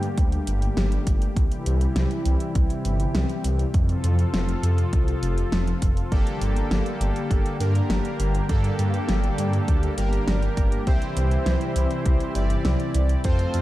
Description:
synthwave; 101 BPM; 4/4; straight; G dorian; A4 = 440 Hz
warm analog pad; sustained chords; 0.0-13.6 s; C3 to A4; -28 LUFS; left 2 dB; lush chorus, sidechain pumping
wide detuned saw bass; bass; 0.0-13.6 s; F1 to G2; -23 LUFS; equal; chorus, sidechain pumping
pop drum kit; drums; 0.0-13.6 s; hi-hat, snare drum; -30 LUFS; equal; overdrive
electronic kick drum; drums; 0.2-13.4 s; -22 LUFS; equal; overdrive
analog synth brass; stabs; 6.1-13.6 s; Bb3 to D5; -30 LUFS; right 2 dB; chorus, digital delay
light reverb, digital ambience; dark, warm production; -20 LUFS; side -16 dB against mid
0.0-13.6 A section
0.0 Gmadd9; 1.4 C; 3.7 F; 6.1 Gmadd9; 10.9 C
0.18 0.77 | 1.36 1.96 2.55 3.15 | 3.74 4.33 4.93 5.52 | 6.12 6.71 7.30 7.90 | 8.49 9.09 9.68 10.28 | 10.87 11.46 12.06 12.65 | 13.24

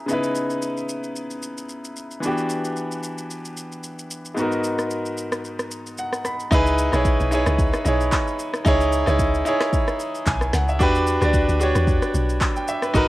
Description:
amapiano; 112 BPM; 4/4; swing 55% on 16ths; C# minor; A4 = 441 Hz
bright concert grand piano; accompaniment; 0.0-13.1 s; G#2 to B5; -22 LUFS; equal; cassette tape
deep house drum kit; drums; 0.1-13.1 s; handclaps, kick drum, rim click, shaker, snare drum; -24 LUFS; equal; cassette tape
deep log drum bass; bass; 6.5-13.1 s; G#1 to E2; -22 LUFS; equal
light reverb, digital ambience; home recording on cassette; -19 LUFS; side -17 dB against mid
0.0-6.5 A section; 6.5-13.1 B section
grand piano fill 5.7-6.5; drop 6.5-13.1
0.0 C#m9; 2.2 Em9; 4.4 G#m9; 6.5 C#m9; 10.8 Em9
| 0.09 0.62 1.16 1.70 | 2.23 2.77 3.30 3.84 | 4.37 4.91 5.45 5.98 | 6.52 7.05 7.59 8.12 | 8.66 9.20 9.73 10.27 | 10.80 11.34 11.87 12.41 | 12.95

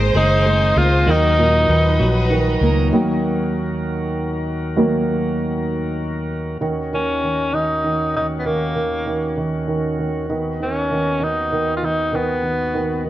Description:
six-eight pop ballad; 65 BPM (dotted quarters); 6/8; straight; Eb minor; A4 = 444 Hz
warm studio violin section; second line; 0.0-2.9 s; Bb4 to C5; -25 LUFS; equal; ping-pong delay
warm grand piano; accompaniment; 0.0-13.1 s; Bb2 to Bb3; -22 LUFS; right 2 dB
bright tonewheel organ; sustained chords; 0.0-13.1 s; Eb2 to Eb6; -26 LUFS; equal; overdrive, slow rotary speaker
twelve-string electric guitar; arpeggios; 0.0-3.5 s; Eb3 to Ab4; -27 LUFS; left 1 dB; tremolo, ping-pong delay
vintage muted fingered electric bass; bass; 0.0-2.9 s; Gb1 to Eb2; -17 LUFS; equal
warm tenor saxophone; melody; 0.2-2.3, 6.9-13.1 s; Bb3 to F4; -19 LUFS; equal
moderate echo chamber reverb, RT60 1.7 s, small room ambience; worn, warbling old tape, cassette tape, warbly pitch drift; -17 LUFS; side -14 dB against mid
0.0-2.9 A section; 2.9-6.6 B section; 6.6-13.1 C section
grand piano solo 2.9-6.6
0.0 Abadd9; 1.1 Ebm; 6.6 Ebm7; 10.3 B/D#
0.15 | 1.07 1.99 | 2.92 3.85 | 4.77 5.68 | 6.61 7.53 | 8.46 9.38 | 10.30 11.22 | 12.14 13.06

